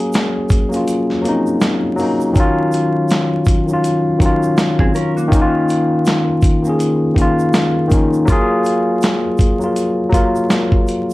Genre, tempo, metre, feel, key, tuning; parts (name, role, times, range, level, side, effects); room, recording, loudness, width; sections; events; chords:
lo-fi hip hop; 81 BPM; 4/4; swing 60% on 16ths; Eb minor; A4 = 440 Hz
tine electric piano; accompaniment; 0.0-11.1 s; Eb3 to Bb4; -15 LUFS; left 1 dB; overdrive, cassette tape, low-pass filter
dusty soul sampler-style drum kit; drums; 0.0-11.1 s; hi-hat, kick drum, snare drum; -16 LUFS; equal
egg shaker; percussion; 0.1-11.1 s; -40 LUFS; right 8 dB
mellow electric guitar; second line; 4.8-5.5 s; Bb3 to Bb4; -25 LUFS; equal; harmonic tremolo, low-pass filter, tape echo
moderate studio reverb, RT60 0.6 s; vinyl crackle; -13 LUFS; side -18 dB against mid
0.0-11.1 A section
kick muted 0.9-2.4
0.0 Ab9sus4; 2.4 Ebm9; 5.3 Db69; 8.3 Gbmaj9